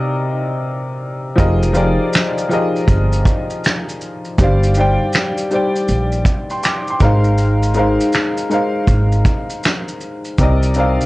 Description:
lo-fi hip hop; 80 BPM; 4/4; swing 64% on 16ths; C minor; A4 = 439 Hz
warm upright piano; accompaniment; 0.0-11.1 s; C3 to D6; -18 LUFS; left 1 dB; cassette tape
upright bass; bass; 1.4-11.0 s; F1 to C2; -16 LUFS; equal
vintage brush drum kit; drums; 1.4-11.1 s; finger snaps, hi-hat, kick drum, shaker, snare drum; -17 LUFS; equal; vintage 12-bit sampler grit
light reverb; cassette tape, nothing above 10.6 kHz; -14 LUFS; side -19 dB against mid
0.0-11.1 A section
0.0 Cm7; 1.4 Fm11; 4.4 G7sus4; 7.0 Ab69; 10.4 Cm7
0.63 | 1.38 2.13 2.88 3.63 | 4.38 5.13 5.88 6.63 | 7.38 8.13 8.88 9.63 | 10.38

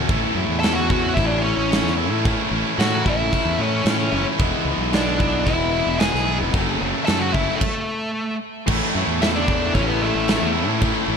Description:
quiet-loud alternative rock; 112 BPM; 4/4; straight; A major; A4 = 440 Hz
high-gain distorted guitar; riff; 0.0-11.2 s; F#2 to E4; -25 LUFS; right 15 dB; distortion
overdriven electric guitar; riff; 0.0-11.2 s; F#2 to E4; -26 LUFS; left 14 dB
fuzz fingered electric bass; bass; 0.1-11.2 s; E1 to A2; -25 LUFS; equal; overdrive
big rock drum kit; drums; 0.1-10.9 s; crash cymbal, kick drum, snare drum; -23 LUFS; equal
dark smooth lead guitar; melody; 0.6-10.5 s; A3 to A5; -25 LUFS; equal; overdrive, tape echo
tight distorted guitar; riff; 8.7-11.2 s; A2 to A3; -28 LUFS; left 1 dB; distortion
light reverb; -18 LUFS; side -6 dB against mid
0.0-8.7 A section; 8.7-11.2 A section
stop 7.6-8.7
0.1 A; 4.4 E; 6.5 F#m7; 8.7 A
| 0.10 0.64 1.17 1.71 | 2.25 2.78 3.32 3.86 | 4.39 4.93 5.47 6.00 | 6.54 7.07 7.61 8.15 | 8.68 9.22 9.75 10.29 | 10.82

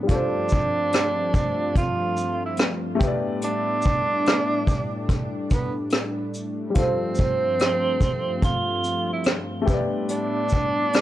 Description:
lo-fi hip hop; 72 BPM; 4/4; swing 65% on 16ths; G mixolydian; A4 = 441 Hz
warm upright piano; accompaniment; 0.0-11.0 s; G3 to D5; -29 LUFS; left 3 dB; cassette tape, plate reverb
warm analog pad; sustained chords; 0.0-11.0 s; G2 to D4; -30 LUFS; left 1 dB; chorus
breathy tenor saxophone; melody; 0.1-11.0 s; B3 to F4; -25 LUFS; right 3 dB; tape echo, plate reverb
vintage brush drum kit; drums; 0.1-11.0 s; hi-hat, kick drum, rim click, shaker; -23 LUFS; equal
moderate studio reverb, RT60 0.6 s; cassette tape; -21 LUFS; side -13 dB against mid
0.0-11.0 A section
0.1 G9sus4; 3.0 A9sus4; 6.8 G9sus4; 9.7 A9sus4
| 0.09 0.93 1.76 2.59 | 3.42 4.26 5.09 5.92 | 6.76 7.59 8.43 9.26 | 10.09 10.93

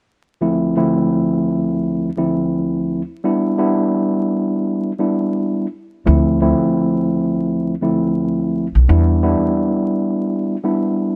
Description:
hip hop; 85 BPM; 4/4; swing 60% on 16ths; D dorian; A4 = 440 Hz
mellow tine electric piano; accompaniment; 0.4-11.2 s; D2 to E4; -18 LUFS; equal; cassette tape, high-pass filter, low-pass filter
upright bass; bass; 6.1-9.3 s; B1 to E2; -17 LUFS; equal
moderate studio reverb, RT60 0.5 s; vinyl crackle; -18 LUFS; mono
0.4-6.1 A section; 6.1-11.2 B section
0.4 Dm7; 3.2 Em7; 6.1 Dm7; 8.9 Em7
| 0.42 1.12 1.83 2.53 | 3.24 3.95 4.65 5.36 | 6.06 6.77 7.48 8.18 | 8.89 9.59 10.30 11.01

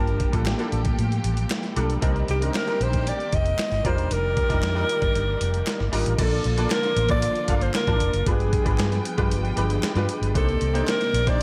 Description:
polished 1980s jazz-funk pop; 115 BPM; 4/4; straight; Bb major; A4 = 444 Hz
mellow alto saxophone; melody; 0.0-11.4 s; G4 to Eb5; -28 LUFS; equal
clear grand piano; accompaniment; 0.0-11.4 s; G3 to A5; -31 LUFS; equal; ensemble chorus
warm studio string section; sustained chords; 0.0-11.4 s; C3 to G5; -37 LUFS; equal
vintage muted fingered electric bass; bass; 0.0-11.4 s; E1 to A2; -27 LUFS; equal
boom bap sampler-style drum kit; drums; 0.1-11.4 s; crash cymbal, hi-hat, kick drum, snare drum; -29 LUFS; equal; gated reverb
group handclap; percussion; 0.5-11.0 s; -40 LUFS; equal
light reverb; -23 LUFS; mono
0.0-6.2 A section; 6.2-11.4 B section
0.0 Gm9; 2.0 Cm9; 3.8 F13sus4; 6.2 Bbmaj7; 8.3 G7b9; 10.4 Cm9
0.46 0.98 1.50 | 2.02 2.54 3.06 3.58 | 4.10 4.62 5.14 5.66 | 6.18 6.70 7.22 7.75 | 8.27 8.79 9.31 9.83 | 10.35 10.88 11.40

